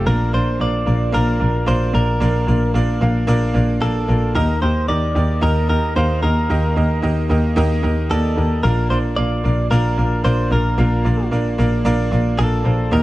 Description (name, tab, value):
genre	piano-driven pop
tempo	112 BPM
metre	4/4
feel	straight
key	Bb major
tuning	A4 = 441 Hz
part	direct-recorded clean electric guitar	melody	0.0-13.0 s	A4 to D5	-23 LUFS	equal	none
part	bright upright piano	accompaniment	0.0-13.0 s	Bb2 to F5	-21 LUFS	right 1 dB	none
part	clear double bass	bass	0.0-13.0 s	Bb1 to Eb2	-18 LUFS	equal	none
room	small room ambience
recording	dark, warm production, nothing above 11.0 kHz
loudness	-15 LUFS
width	side -17 dB against mid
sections	0.1-13.0 A section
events	none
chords	0.1 Bb; 4.4 Eb; 8.6 Bb